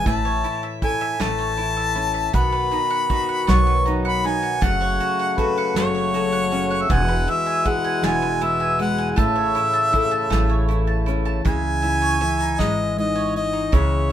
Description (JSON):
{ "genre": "acoustic folk duo or small band", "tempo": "53 BPM (dotted quarters)", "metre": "6/8", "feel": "straight", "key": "unclear", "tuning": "A4 = 440 Hz", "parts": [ { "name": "clear harmonica", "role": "melody", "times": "0.0-14.1 s", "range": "B4 to C#6", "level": "-22 LUFS", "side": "left 1 dB", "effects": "none" }, { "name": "fingerpicked steel-string acoustic guitar", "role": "accompaniment", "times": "0.0-14.1 s", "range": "E2 to A4", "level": "-26 LUFS", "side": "left 4 dB", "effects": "none" }, { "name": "bowl-back mandolin", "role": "arpeggios", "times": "0.0-14.1 s", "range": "G#3 to A5", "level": "-28 LUFS", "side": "right 3 dB", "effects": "none" }, { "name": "upright bass", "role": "bass", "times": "0.1-14.1 s", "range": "E1 to C#2", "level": "-24 LUFS", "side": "right 1 dB", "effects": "none" }, { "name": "soft brush drum kit", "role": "drums", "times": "0.1-13.9 s", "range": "hi-hat, kick drum, snare drum", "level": "-23 LUFS", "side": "right 1 dB", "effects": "none" }, { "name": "hand-pumped harmonium", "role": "sustained chords", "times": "2.3-11.4 s", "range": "B2 to F#4", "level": "-29 LUFS", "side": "right 1 dB", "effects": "none" } ], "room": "moderate studio reverb, RT60 0.5 s", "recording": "minimal, uncompressed stereo recording", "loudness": "-18 LUFS", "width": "side -10 dB against mid", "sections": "0.0-11.5 A section; 11.5-14.1 B section", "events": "none", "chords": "0.1 A; 2.3 B; 4.6 F#m; 6.9 E; 9.2 A; 11.5 C#madd9" }